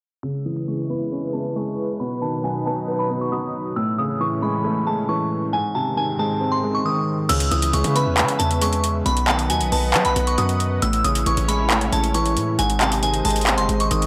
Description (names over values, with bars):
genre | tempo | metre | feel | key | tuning
hip hop, trap | 136 BPM | 4/4 | half-time | C# minor | A4 = 442 Hz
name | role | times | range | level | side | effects
glassy synth bell | melody | 0.2-14.1 s | G#5 to E6 | -26 LUFS | equal | chorus, low-pass filter, analog delay
felt-muted upright piano | accompaniment | 0.2-14.1 s | G#2 to B4 | -27 LUFS | equal | low-pass filter
warm analog pad | sustained chords | 0.4-14.1 s | G#2 to F#5 | -31 LUFS | equal | chorus, low-pass filter
hard-hitting 808-style bass | bass | 7.3-14.1 s | F#1 to F#3 | -25 LUFS | equal | none
trap drum kit | drums | 7.3-14.1 s | crash cymbal, handclaps, hi-hat | -25 LUFS | equal | none
room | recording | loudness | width
little or no reverb | dry, gritty hardware recording | -21 LUFS | mono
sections
0.2-7.3 A section; 7.3-14.1 B section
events
filter sweep 0.2-7.3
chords
0.2 C#m7; 2.0 B; 3.8 Amaj7; 5.5 G#; 7.3 C#m7; 9.1 B; 10.8 Amaj7; 12.6 G#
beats
| 0.23 0.68 1.12 1.56 | 2.00 2.44 2.88 3.32 | 3.76 4.21 4.65 5.09 | 5.53 5.97 6.41 6.85 | 7.29 7.73 8.18 8.62 | 9.06 9.50 9.94 10.38 | 10.82 11.26 11.71 12.15 | 12.59 13.03 13.47 13.91